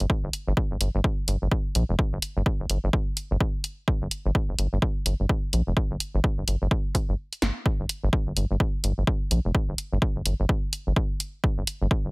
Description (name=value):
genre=minimal techno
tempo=127 BPM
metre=4/4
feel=swing 60% on 16ths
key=G minor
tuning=A4 = 439 Hz
part: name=rubbery square bass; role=bass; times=0.0-12.1 s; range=F1 to Bb1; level=-24 LUFS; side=equal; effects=sidechain pumping
part: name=punchy analog drum machine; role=drums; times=0.0-11.8 s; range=hi-hat, snare drum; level=-28 LUFS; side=equal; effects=none
part: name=electronic kick drum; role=drums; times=0.1-12.0 s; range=none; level=-25 LUFS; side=equal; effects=none
room=little or no reverb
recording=heavily compressed radio sound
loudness=-23 LUFS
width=side -33 dB against mid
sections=0.0-12.1 A section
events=break 7.2-7.7; drum fill 7.4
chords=none